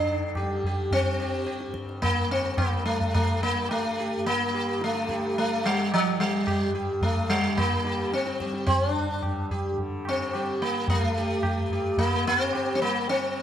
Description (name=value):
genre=indian classical, Hindustani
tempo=108 BPM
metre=4/4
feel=straight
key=G raga darbari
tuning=A4 = 440 Hz
part: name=sitar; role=melody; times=0.0-13.4 s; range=F3 to G4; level=-25 LUFS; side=equal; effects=none
part: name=tanpura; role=drone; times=0.0-13.4 s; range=G2 to G3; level=-36 LUFS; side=left 1 dB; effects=none
part: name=tabla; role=percussion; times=0.4-13.3 s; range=none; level=-29 LUFS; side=equal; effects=none
room=moderate scoring stage reverb, RT60 1.6 s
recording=close, detailed microphones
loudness=-24 LUFS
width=side -10 dB against mid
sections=0.0-13.4 A section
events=none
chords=none